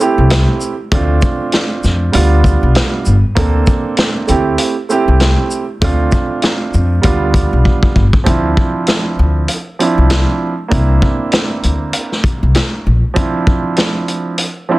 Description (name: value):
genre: hip hop, boom-bap hip-hop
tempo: 98 BPM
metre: 4/4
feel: swing 57% on 16ths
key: D minor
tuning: A4 = 440 Hz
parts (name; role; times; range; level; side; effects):
- dark baby grand piano; accompaniment; 0.0-14.8 s; F3 to A4; -17 LUFS; right 4 dB; high-pass filter, low-pass filter
- vintage drum kit; drums; 0.0-14.5 s; hi-hat, kick drum, shaker, snare drum; -15 LUFS; equal; soft clipping on kick, vintage 12-bit sampler grit
- upright bass; bass; 0.2-13.0 s; G1 to F2; -13 LUFS; left 1 dB; none
room: little or no reverb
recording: dense, heavily limited modern master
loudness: -11 LUFS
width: side -19 dB against mid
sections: 0.0-8.3 A section; 8.3-14.8 B section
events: drum fill 7.7-8.3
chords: 0.0 Am7; 0.9 Dm7; 2.1 G7; 3.4 Bbmaj9/D; 4.3 Am7/D; 5.8 Dm7; 7.0 G7; 8.3 Dm9; 10.7 C9; 13.2 Dm9